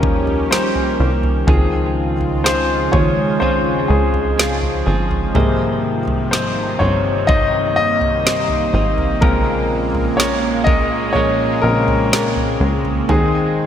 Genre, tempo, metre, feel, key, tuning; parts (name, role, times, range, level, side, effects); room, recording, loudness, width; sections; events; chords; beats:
pop ballad; 62 BPM; 4/4; straight; Ab major; A4 = 440 Hz
clear concert grand piano; accompaniment; 0.0-13.7 s; C3 to Eb5; -18 LUFS; left 4 dB
lush unison pad; sustained chords; 0.0-13.7 s; Bb2 to G4; -23 LUFS; right 2 dB; chorus, phaser
direct-recorded clean electric guitar; arpeggios; 0.0-13.7 s; Ab2 to C5; -24 LUFS; right 4 dB; lush chorus, digital delay
plucky analog bass; bass; 0.0-13.7 s; G1 to Eb2; -21 LUFS; equal
smooth R&B drum kit; drums; 0.0-13.3 s; kick drum, snare drum, toms; -20 LUFS; right 1 dB
moderate lush hall reverb, RT60 2.7 s; bright 1980s-style digital production; -14 LUFS; side -9 dB against mid
0.0-13.7 A section
grand piano solo 0.0-13.7
0.0 Eb7; 1.5 Dbmaj7; 5.3 Abmaj7; 9.2 Bbm7; 13.1 Ab/Eb
0.51 | 1.48 2.45 3.41 4.38 | 5.35 6.32 7.29 8.25 | 9.22 10.19 11.16 12.12 | 13.09